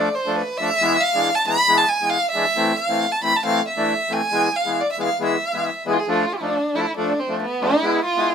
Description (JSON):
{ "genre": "klezmer", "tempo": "136 BPM", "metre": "2/4", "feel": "straight", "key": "E phrygian dominant", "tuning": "A4 = 441 Hz", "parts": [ { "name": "warm violin", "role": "melody", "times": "0.0-8.3 s", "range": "B3 to B5", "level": "-19 LUFS", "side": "right 1 dB", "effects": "none" }, { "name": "accordion", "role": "accompaniment", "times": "0.0-8.3 s", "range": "E3 to E4", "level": "-23 LUFS", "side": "left 2 dB", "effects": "none" } ], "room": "moderate small room reverb, RT60 0.5 s", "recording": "minimal, uncompressed stereo recording", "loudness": "-18 LUFS", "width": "side -7 dB against mid", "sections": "0.0-6.1 A section; 6.1-8.3 A section", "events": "none", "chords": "0.0 Dm; 0.8 E; 2.6 Am; 4.3 E; 6.1 Dm; 7.8 E", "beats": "0.36 | 0.80 1.24 | 1.68 2.12 | 2.57 3.01 | 3.45 3.89 | 4.33 4.77 | 5.21 5.65 | 6.09 6.53 | 6.97 7.41 | 7.85 8.29" }